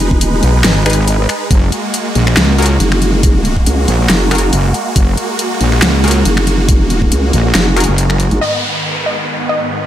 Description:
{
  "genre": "heavy wobble dubstep",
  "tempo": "139 BPM",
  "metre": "4/4",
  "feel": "swing 54% on 16ths, half-time",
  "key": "unclear",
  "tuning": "A4 = 436 Hz",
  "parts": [
    { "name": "supersaw chords", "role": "sustained chords", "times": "0.0-9.9 s", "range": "G#2 to B4", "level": "-18 LUFS", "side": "right 1 dB", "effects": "phaser, sidechain pumping" },
    { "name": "vowel-sweep wobble bass", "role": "bass", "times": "0.0-8.4 s", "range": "D#1 to C#2", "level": "-13 LUFS", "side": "equal", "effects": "chorus, overdrive" },
    { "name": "dubstep drum kit", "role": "drums", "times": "0.0-8.5 s", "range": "crash cymbal, finger snaps, hi-hat, snare drum", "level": "-15 LUFS", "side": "left 1 dB", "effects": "low-pass filter on hats, low-pass filter on snare, low-pass filter on cymbals" },
    { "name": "electronic kick drum", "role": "drums", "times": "0.1-7.1 s", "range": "none", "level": "-12 LUFS", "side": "equal", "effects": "none" },
    { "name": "wobble bass", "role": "bass", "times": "0.4-8.3 s", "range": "F#1 to C#2", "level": "-12 LUFS", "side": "equal", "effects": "chorus, overdrive" },
    { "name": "supersaw stab", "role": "stabs", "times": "0.9-7.8 s", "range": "D#4 to B4", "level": "-21 LUFS", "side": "left 1 dB", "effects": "dub echo" },
    { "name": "wide unison pluck", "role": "melody", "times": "8.4-9.9 s", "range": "D#5", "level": "-19 LUFS", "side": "left 2 dB", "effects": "dub echo" },
    { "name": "downlifter", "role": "sound effects", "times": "8.4-9.9 s", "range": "none", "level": "-18 LUFS", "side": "equal", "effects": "none" }
  ],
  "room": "light reverb, digital ambience",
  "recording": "none",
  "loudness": "-10 LUFS",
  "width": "side -11 dB against mid",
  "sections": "0.0-8.4 A section; 8.4-9.9 B section",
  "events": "drop 0.0-8.4; kick drops out 7.5-8.4",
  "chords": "0.0 G#m; 1.5 F#add9; 8.4 G#m"
}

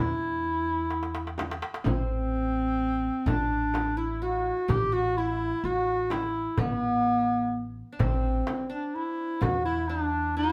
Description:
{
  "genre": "Turkish makam ensemble",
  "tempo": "127 BPM (eighths)",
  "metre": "10/8",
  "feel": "straight",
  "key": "unclear",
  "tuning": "A4 = 439 Hz",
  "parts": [
    { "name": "warm clarinet", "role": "melody", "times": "0.0-10.5 s", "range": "B3-31c to G4", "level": "-30 LUFS", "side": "equal", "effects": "none" },
    { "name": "qanun", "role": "second line", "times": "0.0-10.5 s", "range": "B3-30c to G4", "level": "-39 LUFS", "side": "equal", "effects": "none" },
    { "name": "upright bass", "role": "bass", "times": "0.0-10.5 s", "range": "A1 to E2", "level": "-36 LUFS", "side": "equal", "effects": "none" },
    { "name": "darbuka", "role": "percussion", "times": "0.4-10.5 s", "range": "none", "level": "-33 LUFS", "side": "equal", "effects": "none" },
    { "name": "frame drum", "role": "percussion", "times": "1.4-9.6 s", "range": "none", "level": "-37 LUFS", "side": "equal", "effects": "none" }
  ],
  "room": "moderate studio reverb, RT60 0.7 s",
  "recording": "band playing live in one room",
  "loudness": "-28 LUFS",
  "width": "mono",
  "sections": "0.0-10.5 A section",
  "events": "drum fill 0.9-1.9",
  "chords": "none"
}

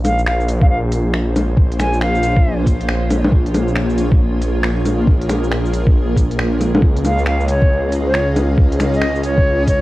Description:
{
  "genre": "future garage",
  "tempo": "137 BPM",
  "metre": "4/4",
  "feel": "swing 63% on 16ths",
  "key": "Bb minor",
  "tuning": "A4 = 440 Hz",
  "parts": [
    { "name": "bright concert flute", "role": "melody", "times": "0.0-2.6, 7.1-9.8 s", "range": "Db5 to Ab5", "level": "-21 LUFS", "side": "equal", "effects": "cassette tape, analog delay" },
    { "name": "granular cloud pad", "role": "sustained chords", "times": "0.0-9.8 s", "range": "Bb3 to F5", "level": "-24 LUFS", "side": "equal", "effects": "built-in reverb, sidechain pumping, cassette tape" },
    { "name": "swelling detuned saw bass", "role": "bass", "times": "0.0-9.8 s", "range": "Bb1 to Db2", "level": "-18 LUFS", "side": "equal", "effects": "sidechain pumping" },
    { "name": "organic electronic drum kit", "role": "drums", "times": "0.0-9.8 s", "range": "bongos, finger snaps, hi-hat, shaker", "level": "-21 LUFS", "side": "left 1 dB", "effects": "vintage 12-bit sampler grit, cassette tape" },
    { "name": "electronic kick drum", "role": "drums", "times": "0.6-9.8 s", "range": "none", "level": "-13 LUFS", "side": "equal", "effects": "vintage 12-bit sampler grit, cassette tape" }
  ],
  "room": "digital ambience",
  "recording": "home recording on cassette, vinyl crackle",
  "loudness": "-13 LUFS",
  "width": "side -18 dB against mid",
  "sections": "0.0-9.8 A section",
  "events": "none",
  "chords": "0.0 Bbm7; 6.8 Dbadd9"
}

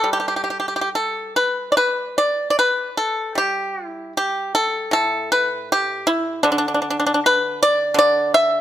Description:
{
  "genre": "chinese traditional, Chinese solo plucked strings",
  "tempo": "68-81 BPM",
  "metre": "4/4",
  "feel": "rubato",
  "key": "G gong mode",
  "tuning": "A4 = 440 Hz",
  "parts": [
    { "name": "pipa", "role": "solo", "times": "0.0-8.6 s", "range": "A2 to E5", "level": "-17 LUFS", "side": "equal", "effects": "none" }
  ],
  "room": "light reverb",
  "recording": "close, detailed microphones",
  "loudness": "-17 LUFS",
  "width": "side -11 dB against mid",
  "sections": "0.0-1.8 A section; 1.8-8.6 B section",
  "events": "none",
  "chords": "none"
}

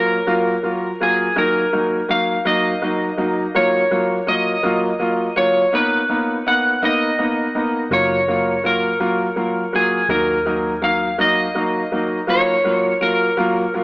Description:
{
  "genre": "pop",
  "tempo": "55 BPM (dotted quarters)",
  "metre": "6/8",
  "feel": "straight",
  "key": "F# major",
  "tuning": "A4 = 440 Hz",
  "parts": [
    { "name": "electric slide guitar", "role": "melody", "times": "0.0-13.8 s", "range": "G#4 to F#5", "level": "-18 LUFS", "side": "equal", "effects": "dub echo" },
    { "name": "clear baby grand piano", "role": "accompaniment", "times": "0.0-13.8 s", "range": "F#3 to E#4", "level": "-19 LUFS", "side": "equal", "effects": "dub echo" },
    { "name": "vintage muted fingered electric bass", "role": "bass", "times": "7.9-13.8 s", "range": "F#1 to D#2", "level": "-35 LUFS", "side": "equal", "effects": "none" }
  ],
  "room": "wet spring reverb, RT60 2.6 s",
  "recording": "echo-heavy mix, small speaker sound",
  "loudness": "-16 LUFS",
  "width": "side -24 dB against mid",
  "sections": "0.0-13.8 A section",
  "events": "none",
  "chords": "0.0 F#maj7; 1.4 D#m; 3.5 F#maj7; 5.7 Bmaj7; 7.9 F#maj7; 10.1 D#m; 12.3 F#maj7"
}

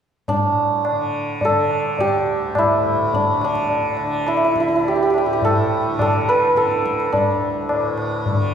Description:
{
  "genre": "indian classical, Hindustani",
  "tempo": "105 BPM",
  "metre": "3/4",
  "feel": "straight",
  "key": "D raga durga",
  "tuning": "A4 = 439 Hz",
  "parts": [
    { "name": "santur", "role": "melody", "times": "0.3-8.5 s", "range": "D4 to B4", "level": "-18 LUFS", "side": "right 2 dB", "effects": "none" },
    { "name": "tanpura", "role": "drone", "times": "0.3-8.5 s", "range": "D2 to D3", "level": "-27 LUFS", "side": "left 2 dB", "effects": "none" },
    { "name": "tabla", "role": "percussion", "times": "0.3-8.5 s", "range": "none", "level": "-23 LUFS", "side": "left 2 dB", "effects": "none" }
  ],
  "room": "wet scoring stage reverb, RT60 1.9 s",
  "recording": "recorded in a church or concert hall",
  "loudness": "-17 LUFS",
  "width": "side -8 dB against mid",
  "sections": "0.3-8.5 A section",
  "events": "none",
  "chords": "none"
}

